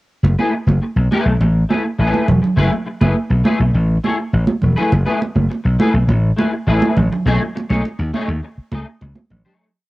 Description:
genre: funk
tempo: 102 BPM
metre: 4/4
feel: straight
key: F# dorian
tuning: A4 = 439 Hz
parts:
  - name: clean electric guitar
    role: accompaniment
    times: 0.2-9.7 s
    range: A3 to D#5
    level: -20 LUFS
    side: left 2 dB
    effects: ensemble chorus, cassette tape
  - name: slap bass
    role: bass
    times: 0.2-9.4 s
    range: E1 to D#2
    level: -15 LUFS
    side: equal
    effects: none
  - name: congas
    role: percussion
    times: 0.2-9.6 s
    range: none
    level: -20 LUFS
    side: right 2 dB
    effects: none
room: small room ambience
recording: home recording on cassette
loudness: -14 LUFS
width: side -19 dB against mid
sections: 0.2-9.6 breakdown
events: fade-out 7.3-9.6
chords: 0.2 F#m11 (rootless); 7.3 B13 (rootless)

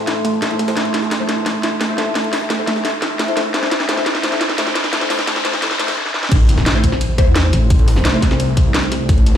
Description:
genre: dark technical drum and bass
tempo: 173 BPM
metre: 4/4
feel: straight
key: A minor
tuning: A4 = 440 Hz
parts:
  - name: dark analog pad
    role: sustained chords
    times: 0.0-9.4 s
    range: A3 to E5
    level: -25 LUFS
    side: right 2 dB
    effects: chorus, sidechain pumping
  - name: riser and impact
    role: sound effects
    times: 0.0-7.7 s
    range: none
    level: -23 LUFS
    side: equal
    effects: none
  - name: warbly tape-like pad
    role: texture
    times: 0.0-6.0 s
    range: A4 to C6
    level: -28 LUFS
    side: left 4 dB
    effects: chorus, built-in reverb, sidechain pumping
  - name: wide unison pluck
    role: arpeggios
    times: 0.1-5.9 s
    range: A3 to E4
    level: -25 LUFS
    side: right 2 dB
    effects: auto-pan, sidechain pumping, digital delay
  - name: drum and bass drum kit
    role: drums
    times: 0.1-9.4 s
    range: crash cymbal, hi-hat, snare drum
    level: -20 LUFS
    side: equal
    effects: none
  - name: jungle sampler-style drum kit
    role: drums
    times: 0.1-9.4 s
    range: hi-hat, ride cymbal, snare drum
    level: -30 LUFS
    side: equal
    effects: high-pass filter on cymbals, high-pass filter on snare, high-pass filter on hats, high-pass filter on room
  - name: filtered dub chord stab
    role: stabs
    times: 0.5-8.2 s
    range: A3 to C5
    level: -24 LUFS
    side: left 2 dB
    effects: phaser, ensemble chorus, digital delay
  - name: wide detuned saw bass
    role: bass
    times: 6.3-9.4 s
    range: A1 to E2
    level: -15 LUFS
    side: equal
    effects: chorus, overdrive, sidechain pumping
  - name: electronic kick drum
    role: drums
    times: 6.3-9.2 s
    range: none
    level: -13 LUFS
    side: equal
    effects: none
room: light reverb, digital ambience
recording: played on a big sound system in a bare room, large studio reverb, high-pass filter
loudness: -14 LUFS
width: side -10 dB against mid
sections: 0.0-6.3 A section; 6.3-9.4 B section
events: build-up 0.0-6.3; drum fill 0.0-6.0, 6.0-6.3; riser 0.0-6.0; filter sweep on synth arpeggio sound 0.0-6.3; filter sweep 0.0-6.3; drop 6.3-9.4; impact 6.3-7.7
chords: 0.0 Am

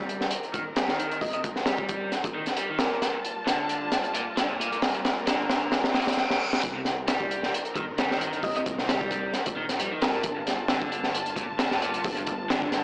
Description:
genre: breakbeat, breaks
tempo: 133 BPM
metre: 4/4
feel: swing 54% on 16ths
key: C dorian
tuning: A4 = 440 Hz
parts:
  - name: warm symphonic string section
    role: sustained chords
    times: 0.0-12.8 s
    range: Eb3 to A5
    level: -34 LUFS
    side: equal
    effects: sidechain pumping
  - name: crunchy overdriven guitar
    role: riff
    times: 0.0-12.8 s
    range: G2 to G3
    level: -32 LUFS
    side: equal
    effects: vintage 12-bit sampler grit, low-pass filter, analog delay
  - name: riser and reverse cymbal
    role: sound effects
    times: 3.3-6.6 s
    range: none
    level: -36 LUFS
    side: equal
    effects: none
  - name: crunchy breakbeat drum kit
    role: drums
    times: 0.1-12.8 s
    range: hi-hat, kick drum, snare drum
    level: -26 LUFS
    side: equal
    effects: none
  - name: thumb-piano-like synth pluck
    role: melody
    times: 1.2-3.4, 8.4-10.7 s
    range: Bb4 to Eb5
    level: -33 LUFS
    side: equal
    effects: chorus, telephone sound, analog delay
  - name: dark detuned saw bass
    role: bass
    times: 6.6-12.8 s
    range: G1 to C2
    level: -37 LUFS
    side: equal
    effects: none
room: moderate digital room reverb, RT60 1.1 s, studio ambience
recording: dry, gritty hardware recording, transformer saturation, AM radio sound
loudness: -24 LUFS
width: side -31 dB against mid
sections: 0.0-6.6 A section; 6.6-12.8 B section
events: build-up 0.0-6.6; drum fill 3.0-6.2, 6.2-6.6; reverse cymbal 5.8-6.6; drop 6.6-12.8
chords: 0.0 Cm9; 2.8 Gm9; 6.6 Cm9; 10.0 Gm9

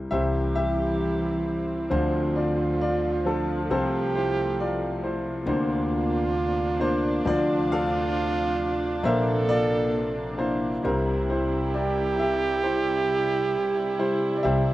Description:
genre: acoustic folk-pop ballad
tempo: 67 BPM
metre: 4/4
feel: straight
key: unclear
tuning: A4 = 444 Hz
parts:
  - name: warm grand piano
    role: melody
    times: 0.0-14.7 s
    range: Bb1 to F5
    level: -26 LUFS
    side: left 1 dB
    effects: none
  - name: upright bass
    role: bass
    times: 0.0-14.7 s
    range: Bb1 to D2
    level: -31 LUFS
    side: equal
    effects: none
  - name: clear French horn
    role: second line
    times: 0.1-14.7 s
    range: E4 to A4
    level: -27 LUFS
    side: right 3 dB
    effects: none
  - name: dark chamber string section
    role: sustained chords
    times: 0.1-14.7 s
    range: C3 to G4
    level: -32 LUFS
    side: left 1 dB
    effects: none
room: little or no reverb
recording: recorded outdoors, with no room sound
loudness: -22 LUFS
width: side -16 dB against mid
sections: 0.1-14.7 A section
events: none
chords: 0.1 C; 1.9 Dm7; 3.7 F/C; 5.5 Bbadd9/D; 7.3 Dm7; 9.0 Bbadd9; 10.8 C

